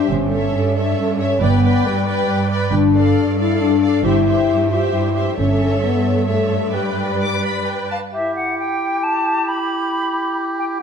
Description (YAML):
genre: cinematic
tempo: 135 BPM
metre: 3/4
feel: straight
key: G mixolydian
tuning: A4 = 442 Hz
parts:
  - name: rich symphonic violin section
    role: melody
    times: 0.0-8.0 s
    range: E5 to D6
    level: -26 LUFS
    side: left 4 dB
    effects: none
  - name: warm symphonic violin section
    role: second line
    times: 0.0-7.9 s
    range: C5 to D5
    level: -27 LUFS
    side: left 2 dB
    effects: none
  - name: warm symphonic viola section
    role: accompaniment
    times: 0.0-7.9 s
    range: G4 to B4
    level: -24 LUFS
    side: right 2 dB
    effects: none
  - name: dark French horn section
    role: sustained chords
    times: 0.0-7.9 s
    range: G3 to F4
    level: -19 LUFS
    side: left 6 dB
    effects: none
  - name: rich studio cello section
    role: bass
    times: 0.0-7.9 s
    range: G2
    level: -22 LUFS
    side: right 5 dB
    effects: none
  - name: rich studio double bass section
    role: bass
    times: 0.1-5.8 s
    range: G1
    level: -21 LUFS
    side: right 5 dB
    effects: none
  - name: silver concert flute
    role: second line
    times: 7.9-10.8 s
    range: E5 to B5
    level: -21 LUFS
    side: left 1 dB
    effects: none
  - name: warm clarinet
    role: second line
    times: 8.1-10.8 s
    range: E4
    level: -26 LUFS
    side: right 2 dB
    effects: none
  - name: warm oboe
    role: second line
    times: 8.1-10.8 s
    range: G4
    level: -24 LUFS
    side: right 2 dB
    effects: none
room: moderate scoring stage reverb, RT60 1.8 s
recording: none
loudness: -16 LUFS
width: side -7 dB against mid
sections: 0.0-8.1 A section; 8.1-10.8 B section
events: none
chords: 0.1 A/G; 1.4 G; 2.7 Dm/G; 4.0 C/G; 5.4 A/G; 6.7 G; 8.1 Em